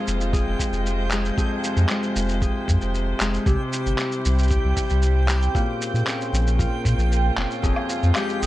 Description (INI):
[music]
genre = folktronica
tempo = 115 BPM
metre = 4/4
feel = straight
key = F harmonic minor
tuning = A4 = 439 Hz
[part]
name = dark string quartet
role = sustained chords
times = 0.0-8.5 s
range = C3 to C5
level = -30 LUFS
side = right 2 dB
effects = none
[part]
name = Celtic harp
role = arpeggios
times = 0.0-8.5 s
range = F2 to Ab4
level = -27 LUFS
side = left 3 dB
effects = low-pass filter, digital delay
[part]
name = backwards swelling texture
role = texture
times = 0.2-8.5 s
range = G5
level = -33 LUFS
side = right 6 dB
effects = built-in reverb
[part]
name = warm sub bass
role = bass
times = 0.1-8.5 s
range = F1 to Bb2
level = -21 LUFS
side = equal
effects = none
[part]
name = electronic shaker, handclaps and woodblock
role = drums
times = 0.1-8.5 s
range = none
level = -28 LUFS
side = equal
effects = none
[part]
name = electronic kick drum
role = drums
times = 0.3-7.7 s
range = none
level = -24 LUFS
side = equal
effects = none
[part]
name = warm clarinet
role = melody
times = 8.2-8.5 s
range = G4 to Ab4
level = -27 LUFS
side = left 4 dB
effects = none
[sound]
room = little or no reverb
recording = vinyl crackle, nothing above 10.8 kHz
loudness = -20 LUFS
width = side -15 dB against mid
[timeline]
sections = 0.0-8.5 A section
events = none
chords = 0.0 Fm; 3.5 C; 5.5 Bbmadd9; 7.6 Fm